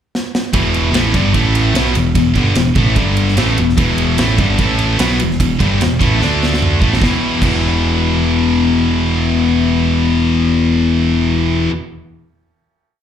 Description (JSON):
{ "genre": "hard rock", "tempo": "149 BPM", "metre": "4/4", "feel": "straight", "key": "E minor", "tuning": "A4 = 439 Hz", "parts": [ { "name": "big rock drum kit", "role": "drums", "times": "0.1-7.5 s", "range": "crash cymbal, kick drum, ride cymbal, snare drum, toms", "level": "-18 LUFS", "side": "right 1 dB", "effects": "none" }, { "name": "distorted electric guitar", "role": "riff", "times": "0.5-11.7 s", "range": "E2 to D4", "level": "-19 LUFS", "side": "equal", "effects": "distortion" }, { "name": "high-gain distorted guitar", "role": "riff", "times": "0.5-11.7 s", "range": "E2 to D4", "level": "-18 LUFS", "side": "left 9 dB", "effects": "distortion" }, { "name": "high-gain distorted guitar", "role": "riff", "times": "0.5-11.7 s", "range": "E2 to D4", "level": "-21 LUFS", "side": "right 12 dB", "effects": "distortion, slapback echo" }, { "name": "growling picked electric bass", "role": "bass", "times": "0.5-11.7 s", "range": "E1 to D2", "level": "-17 LUFS", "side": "right 1 dB", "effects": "overdrive" } ], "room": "light reverb", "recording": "live gig heard through the venue's PA, club reverb", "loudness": "-12 LUFS", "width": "side -9 dB against mid", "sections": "0.0-0.5 pickup bar; 0.5-7.0 riff; 7.0-10.2 final chord", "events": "drum fill 0.1-0.5, 6.2-7.0", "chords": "0.0 N.C.; 0.5 Em; 1.3 A5; 1.8 Em; 3.0 G5; 3.4 Em; 4.6 A5; 5.0 Em; 6.2 D5; 6.8 A5; 7.0 E5", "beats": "0.14 | 0.54 0.94 1.35 1.75 | 2.16 2.57 2.97 3.38 | 3.79 4.19 4.60 5.00 | 5.41 5.82 6.22 6.62 | 7.02 7.42 7.82 8.22 | 8.62 9.02 9.42 9.81" }